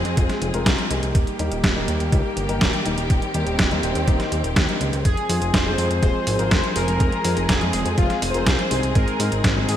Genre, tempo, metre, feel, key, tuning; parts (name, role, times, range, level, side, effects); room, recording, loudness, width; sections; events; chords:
italo disco; 123 BPM; 4/4; straight; F minor; A4 = 442 Hz
warm symphonic string section; sustained chords; 0.0-9.8 s; Eb3 to Ab4; -27 LUFS; equal
dark concert grand piano; stabs; 0.0-9.8 s; Ab2 to Bb4; -27 LUFS; left 3 dB; digital delay
fat analog bass; bass; 0.0-9.8 s; Eb1 to Ab2; -25 LUFS; equal; tube saturation
detuned 8-bit digital drum machine; drums; 0.1-9.8 s; hi-hat, snare drum; -24 LUFS; equal; overdrive, small room reverb, gated reverb
electronic kick drum; drums; 0.2-9.5 s; -20 LUFS; equal; overdrive, small room reverb
analog synth brass; melody; 5.1-9.8 s; F4 to C5; -26 LUFS; left 1 dB; chorus, cassette tape, digital delay
moderate lush hall reverb, RT60 2.4 s; bright 1980s-style digital production; -18 LUFS; side -10 dB against mid
0.0-9.8 A section
0.0 Fm; 1.1 Eb; 5.1 Fm